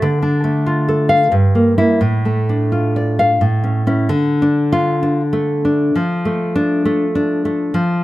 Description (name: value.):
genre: romantic piece for solo classical guitar.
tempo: 85-104 BPM.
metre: 3/4.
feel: rubato.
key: D minor.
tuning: A4 = 439 Hz.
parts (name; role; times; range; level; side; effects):
nylon-string guitar; solo; 0.0-8.0 s; G2 to F5; -14 LUFS; equal; none.
room: light reverb.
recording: close, detailed microphones.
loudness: -14 LUFS.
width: side -16 dB against mid.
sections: 0.0-4.1 A section; 4.1-8.0 B section.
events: none.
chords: 0.0 Dm; 1.3 Edim/G; 2.0 Dm/A; 3.4 A; 4.1 Dm; 5.9 Dm/F.